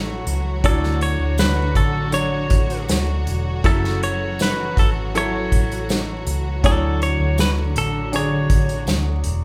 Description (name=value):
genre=pop ballad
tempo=80 BPM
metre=4/4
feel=straight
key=unclear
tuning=A4 = 440 Hz
part: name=bright grand piano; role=accompaniment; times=0.0-9.4 s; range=A2 to C#5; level=-30 LUFS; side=equal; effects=none
part: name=rich studio string section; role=sustained chords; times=0.0-9.4 s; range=D3 to C#5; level=-29 LUFS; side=equal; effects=none
part: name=vintage muted fingered electric bass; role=bass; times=0.0-9.4 s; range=E1 to D2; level=-25 LUFS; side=equal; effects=none
part: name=unplugged drum kit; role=drums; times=0.3-9.4 s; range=hi-hat, kick drum, snare drum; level=-22 LUFS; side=equal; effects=none
part: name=direct-recorded clean electric guitar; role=melody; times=0.7-8.8 s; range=A4 to C#5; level=-27 LUFS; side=equal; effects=none
part: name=tambourine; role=percussion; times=1.4-9.0 s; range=none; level=-40 LUFS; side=equal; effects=none
room=wet large studio reverb, RT60 0.8 s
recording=band playing live in one room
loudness=-20 LUFS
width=mono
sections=0.0-9.4 A section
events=none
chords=0.0 F#m7; 0.6 Dmaj7; 3.6 F#m7; 6.6 Dmaj7